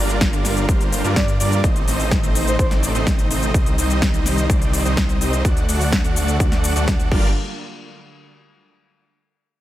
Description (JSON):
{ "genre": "EDM, festival progressive house", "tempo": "126 BPM", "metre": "4/4", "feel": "straight", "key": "G minor", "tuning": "A4 = 440 Hz", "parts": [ { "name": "lush unison pad", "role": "sustained chords", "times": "0.0-7.3 s", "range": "C3 to F#4", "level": "-28 LUFS", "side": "equal", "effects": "chorus, sidechain pumping" }, { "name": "dense compressed supersaw", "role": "riff", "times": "0.0-7.3 s", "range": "G3 to F#5", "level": "-24 LUFS", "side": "right 1 dB", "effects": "sidechain pumping, digital delay" }, { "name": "detuned saw bass", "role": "bass", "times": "0.0-7.3 s", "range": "G1 to G2", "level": "-22 LUFS", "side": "equal", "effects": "sidechain pumping" }, { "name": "big-room dance drum kit", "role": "drums", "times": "0.1-7.2 s", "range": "crash cymbal, hi-hat, shaker, snare drum", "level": "-25 LUFS", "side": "left 1 dB", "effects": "overdrive" }, { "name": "electronic kick drum", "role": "drums", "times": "0.2-7.2 s", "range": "none", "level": "-19 LUFS", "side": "equal", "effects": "overdrive" }, { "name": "breathy flute-like synth lead", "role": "melody", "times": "1.2-2.7 s", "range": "C5 to D5", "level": "-28 LUFS", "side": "equal", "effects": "chorus, digital delay" } ], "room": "digital ambience", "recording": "none", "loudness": "-16 LUFS", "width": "side -14 dB against mid", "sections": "0.0-7.4 A section; 7.4-9.3 B section", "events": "drop 0.0-7.4", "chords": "0.0 Gm7; 1.6 Adim; 3.5 Cm; 5.4 D; 7.1 Gm7; 7.4 N.C.", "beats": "0.21 0.69 1.16 | 1.64 2.12 2.59 3.07 | 3.54 4.02 4.50 4.97 | 5.45 5.92 6.40 6.88" }